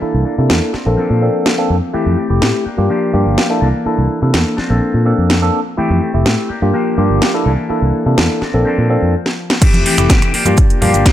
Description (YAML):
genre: filtered disco house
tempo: 125 BPM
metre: 4/4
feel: straight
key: F major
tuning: A4 = 441 Hz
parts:
  - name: bright tine electric piano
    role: accompaniment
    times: 0.0-11.1 s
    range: A3 to A4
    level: -17 LUFS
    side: equal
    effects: phaser, sidechain pumping, low-pass filter
  - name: electric guitar with an envelope filter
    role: riff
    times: 0.0-11.1 s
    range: E3 to A4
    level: -21 LUFS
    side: left 2 dB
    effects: sidechain pumping, low-pass filter
  - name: fingered electric bass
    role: bass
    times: 0.0-11.0 s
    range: F1 to C3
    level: -15 LUFS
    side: equal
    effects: sidechain pumping, low-pass filter
  - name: house drum kit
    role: drums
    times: 0.5-11.1 s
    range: crash cymbal, finger snaps, hi-hat, snare drum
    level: -17 LUFS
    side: equal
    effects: sidechain pumping on hats, sidechain pumping on cymbals
  - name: electronic kick drum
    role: drums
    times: 9.6-11.1 s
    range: none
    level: -11 LUFS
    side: equal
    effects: none
  - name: maracas and congas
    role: percussion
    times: 9.6-11.1 s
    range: none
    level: -22 LUFS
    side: right 2 dB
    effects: none
room: light reverb, digital ambience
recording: none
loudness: -12 LUFS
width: side -12 dB against mid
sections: 0.0-9.6 A section; 9.6-11.1 B section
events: filter sweep 0.0-9.6; stop 9.1-9.6; drum fill 9.3-9.6; drop 9.6-11.1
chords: 0.0 C13; 0.7 Bbmaj9; 1.9 Fmaj9; 2.7 Gm7; 3.6 C13; 4.6 Bbmaj9; 5.8 Fmaj9; 6.5 Gm7; 7.5 C13; 8.4 Bbmaj9; 9.6 Fmaj9; 10.3 Gm7